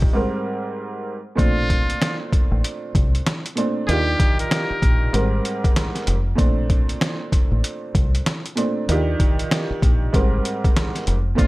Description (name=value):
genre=hip hop, boom-bap hip-hop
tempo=96 BPM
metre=4/4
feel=swing 62% on 16ths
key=Bb major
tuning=A4 = 444 Hz
part: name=warm upright piano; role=accompaniment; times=0.0-11.5 s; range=Ab2 to Bb4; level=-24 LUFS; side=right 2 dB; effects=cassette tape, high-pass filter, low-pass filter
part: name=deep dub fingered electric bass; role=bass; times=0.0-11.5 s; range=F1 to Eb2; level=-21 LUFS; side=equal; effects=none
part: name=trip hop sampler-style drum kit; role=drums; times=0.0-11.5 s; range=hi-hat, kick drum, snare drum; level=-20 LUFS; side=equal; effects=overdrive
part: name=trumpet with metal mute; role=melody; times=1.4-5.3, 11.4-11.5 s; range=F4 to Bb4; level=-26 LUFS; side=left 1 dB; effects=high-pass filter, low-pass filter, analog delay
room=studio reverb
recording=none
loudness=-18 LUFS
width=side -20 dB against mid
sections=0.0-1.4 A section; 1.4-11.5 B section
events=break 0.1-1.4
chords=0.1 Abmaj9; 1.4 Bbmaj9; 3.9 Ebmaj9; 5.1 Abmaj9; 6.4 Bbmaj9; 8.9 Ebmaj9; 10.1 Abmaj9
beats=0.14 0.76 | 1.39 2.01 2.63 3.26 | 3.88 4.51 5.13 5.76 | 6.38 7.01 7.63 8.26 | 8.88 9.51 10.13 10.76 | 11.38